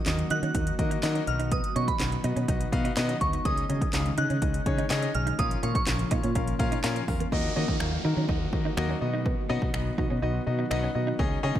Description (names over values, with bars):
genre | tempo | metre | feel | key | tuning
dance-pop | 124 BPM | 4/4 | straight | Eb minor | A4 = 440 Hz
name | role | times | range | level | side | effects
soft synth bell | melody | 0.0-6.4 s | B5 to Gb6 | -33 LUFS | right 2 dB | chorus, phaser, digital delay
airy breathy pad | sustained chords | 0.0-11.6 s | Db3 to Ab4 | -37 LUFS | equal | chorus, sidechain pumping
warm concert grand piano | accompaniment | 0.1-11.6 s | Bb3 to F#5 | -32 LUFS | left 4 dB | sidechain pumping
direct-recorded clean electric guitar | riff | 0.1-11.6 s | Bb3 to Eb4 | -37 LUFS | right 6 dB | ensemble chorus
mellow fretless electric bass | bass | 0.1-11.6 s | Bb1 to Eb3 | -29 LUFS | equal | analog chorus, sidechain pumping
house drum kit | drums | 0.1-11.6 s | finger snaps, handclaps, hi-hat, kick drum, snare drum | -30 LUFS | equal | overdrive
group handclap | percussion | 0.1-7.0 s | none | -40 LUFS | right 3 dB | none
downlifter | sound effects | 7.3-11.2 s | none | -38 LUFS | right 2 dB | none
room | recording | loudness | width
light reverb, digital ambience | none | -24 LUFS | side -11 dB against mid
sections
0.0-7.3 A section; 7.3-11.6 B section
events
none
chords
0.0 Ebm; 1.3 B; 3.5 Dbsus2; 5.4 Bbm; 7.3 Ebm; 9.0 B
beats
0.07 0.55 1.03 | 1.52 2.00 2.48 2.97 | 3.45 3.94 4.42 4.90 | 5.39 5.87 6.36 6.84 | 7.32 7.81 8.29 8.78 | 9.26 9.74 10.23 10.71 | 11.19